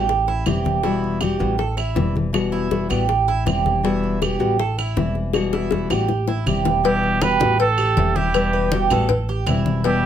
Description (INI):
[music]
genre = latin, Cuban son and guajira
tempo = 160 BPM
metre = 4/4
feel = straight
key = E minor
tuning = A4 = 440 Hz
[part]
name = nylon-string guitar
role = accompaniment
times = 0.0-10.1 s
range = B2 to F#4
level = -23 LUFS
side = left 5 dB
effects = none
[part]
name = Cuban tres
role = arpeggios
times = 0.0-10.1 s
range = E4 to B4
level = -23 LUFS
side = right 7 dB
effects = none
[part]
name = upright bass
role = bass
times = 0.0-10.1 s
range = E1 to A1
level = -24 LUFS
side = right 1 dB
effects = none
[part]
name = bongos and cowbell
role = percussion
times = 0.1-10.0 s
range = none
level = -25 LUFS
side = left 6 dB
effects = none
[part]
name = congas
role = percussion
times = 0.1-10.1 s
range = none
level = -26 LUFS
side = left 3 dB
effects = none
[part]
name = claves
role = percussion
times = 0.5-9.7 s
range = none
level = -31 LUFS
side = right 5 dB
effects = none
[part]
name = breathy trumpet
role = melody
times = 6.9-10.1 s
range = G4 to B4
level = -21 LUFS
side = right 4 dB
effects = none
[sound]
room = moderate studio reverb, RT60 0.5 s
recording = none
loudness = -17 LUFS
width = side -9 dB against mid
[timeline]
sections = 0.0-6.8 A section; 6.8-10.1 B section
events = drum fill 5.3-6.8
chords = 0.1 Am7; 0.8 Emadd9; 1.6 Am7; 2.3 Emadd9; 3.1 Am7; 3.8 Emadd9; 4.6 Am7; 5.3 Emadd9; 6.1 Am7; 6.8 Emadd9; 7.6 Am7; 8.3 Emadd9; 9.1 Am7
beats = 0.09 0.46 | 0.84 1.21 1.59 1.97 | 2.34 2.72 3.09 3.47 | 3.84 4.22 4.59 4.97 | 5.35 5.72 6.10 6.47 | 6.85 7.22 7.60 7.97 | 8.35 8.72 9.10 9.47 | 9.85